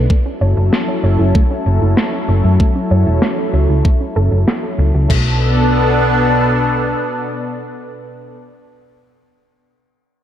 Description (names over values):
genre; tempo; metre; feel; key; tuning
synthwave; 96 BPM; 4/4; straight; B minor; A4 = 440 Hz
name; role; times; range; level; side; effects
lush unison pad; sustained chords; 0.0-8.4 s; B2 to A4; -17 LUFS; equal; chorus, phaser, sidechain pumping
wide unison pluck; arpeggios; 0.0-5.4 s; A3 to C#5; -24 LUFS; right 2 dB; tape echo
hollow-body short-scale picked electric bass; bass; 0.0-6.9 s; E1 to F#2; -14 LUFS; equal; low-pass filter
electronic kick drum; drums; 0.1-5.2 s; none; -13 LUFS; equal; none
modern studio drum kit; drums; 0.7-5.2 s; crash cymbal, snare drum; -22 LUFS; left 1 dB; low-pass filter on cymbals, low-pass filter on snare, low-pass filter on room
room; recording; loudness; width
moderate plate reverb, RT60 2.8 s; dreamy mix soaked in reverb; -12 LUFS; side -10 dB against mid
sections
0.0-5.1 A section; 5.1-7.6 B section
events
filter sweep on drum 0.0-5.1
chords
0.1 F#m7; 5.1 Bm7